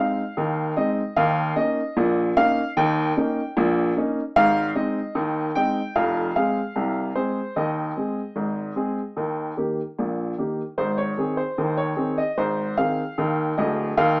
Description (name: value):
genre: ragtime piano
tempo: 75 BPM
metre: 2/4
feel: straight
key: Ab major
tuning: A4 = 439 Hz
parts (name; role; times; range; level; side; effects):
- clear upright piano; solo; 0.0-14.2 s; D1 to G5; -21 LUFS; equal; none
room: wet small room reverb, RT60 0.6 s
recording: rough home demo mix, small speaker sound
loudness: -21 LUFS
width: side -31 dB against mid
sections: 0.0-14.2 A section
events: none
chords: 0.0 Ab; 1.2 Eb7; 4.4 Ab; 6.0 Fm; 7.6 Ab/Eb; 9.2 Eb; 10.8 Ab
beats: 0.38 | 1.18 1.98 | 2.77 3.57 | 4.36 5.16 | 5.95 6.75 | 7.56 8.36 | 9.17 9.97 | 10.78 11.58 | 12.38 13.19 | 13.98